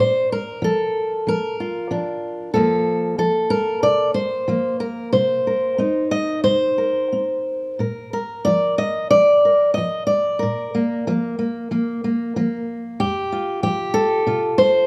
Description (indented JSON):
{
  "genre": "folk, solo fingerstyle acoustic guitar",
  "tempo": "93 BPM",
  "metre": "4/4",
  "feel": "rubato",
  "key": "unclear",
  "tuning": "A4 = 440 Hz",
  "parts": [
    { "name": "fingerpicked steel-string acoustic guitar", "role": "solo", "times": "0.0-14.9 s", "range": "F2 to Eb5", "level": "-20 LUFS", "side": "equal", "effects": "none" }
  ],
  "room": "moderate large studio reverb, RT60 1.2 s",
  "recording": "none",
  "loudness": "-20 LUFS",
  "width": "mono",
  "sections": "0.0-14.9 A section",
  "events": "none",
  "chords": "0.0 Bbmaj7; 2.5 F5; 5.1 Cm7; 7.8 Bb; 13.0 Fsus2",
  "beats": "0.62 1.26 1.90 | 2.54 3.18 3.83 4.48 | 5.13 5.79 6.45 7.12 | 7.80 8.46 9.12 9.77 | 10.43 11.07 11.72 12.36 | 13.00 13.64 14.28"
}